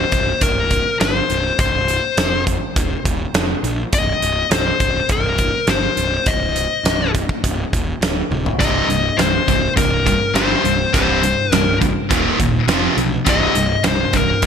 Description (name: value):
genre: hard rock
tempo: 103 BPM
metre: 4/4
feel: straight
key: C minor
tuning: A4 = 442 Hz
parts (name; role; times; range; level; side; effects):
- dark smooth lead guitar; melody; 0.0-14.4 s; Bb4 to Eb5; -19 LUFS; left 5 dB; overdrive
- fuzz picked electric bass; bass; 0.0-14.5 s; C1 to B1; -23 LUFS; equal; overdrive
- big rock drum kit; drums; 0.1-14.5 s; hi-hat, kick drum, snare drum, toms; -20 LUFS; right 1 dB; gated reverb
- distorted electric guitar; riff; 8.6-14.5 s; C2 to F3; -21 LUFS; right 10 dB; overdrive
- scooped high-gain guitar; riff; 8.6-14.5 s; C2 to F3; -21 LUFS; left 11 dB; distortion
room: light reverb, small room ambience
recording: bright 1980s-style digital production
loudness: -15 LUFS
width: side -7 dB against mid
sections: 0.0-14.5 A section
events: drum fill 8.3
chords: 0.0 N.C.; 3.3 Fsus4; 3.9 Cm; 8.0 N.C.; 8.6 C5; 12.1 Eb5; 12.7 F5; 13.3 Cm